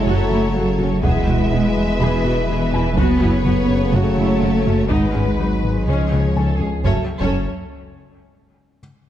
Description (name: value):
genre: cinematic, hybrid orchestral and electronic film score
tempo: 124 BPM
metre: 4/4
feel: straight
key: F# dorian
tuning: A4 = 440 Hz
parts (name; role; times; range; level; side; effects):
- warm symphonic violin section; melody; 0.0-7.5 s; B4 to E5; -30 LUFS; left 4 dB; none
- rich symphonic violin section; second line; 0.0-7.5 s; G#4 to B4; -29 LUFS; left 2 dB; none
- clear trombone section; sustained chords; 0.0-7.0 s; G#2 to A3; -26 LUFS; right 2 dB; none
- dark French horn section; sustained chords; 0.0-7.0 s; C#4 to B4; -29 LUFS; left 4 dB; none
- saturated sub bass; bass; 0.0-7.5 s; E1 to C#2; -24 LUFS; equal; none
- warm symphonic cello section; bass; 0.0-7.5 s; E3 to B3; -22 LUFS; right 1 dB; none
- felt-muted upright piano; texture; 0.0-6.9 s; E4 to B5; -33 LUFS; left 1 dB; tape echo
- warm symphonic viola section; accompaniment; 0.1-7.5 s; G#3 to G#4; -29 LUFS; right 2 dB; none
- harp-like synth pluck; arpeggios; 0.1-6.7 s; C#3 to G#4; -29 LUFS; left 3 dB; none
- smooth gliding synth bass; riff; 0.1-6.8 s; C#2 to G#3; -25 LUFS; left 3 dB; none
- warm symphonic double bass section; bass; 0.1-7.5 s; E1 to F#2; -24 LUFS; right 3 dB; none
- taiko ensemble; drums; 1.0-8.1 s; none; -25 LUFS; equal; none
room: moderate scoring stage reverb, RT60 1.9 s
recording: dark, warm production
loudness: -16 LUFS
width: side -11 dB against mid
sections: 0.0-6.8 A section; 6.8-8.8 B section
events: none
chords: 0.0 F#m; 1.0 E; 3.0 F#m; 4.9 G#m; 5.9 C#; 6.8 F#m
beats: 0.07 0.55 | 1.03 1.52 2.00 2.49 | 2.97 3.46 3.94 4.42 | 4.91 5.39 5.87 6.36 | 6.84 7.33 7.81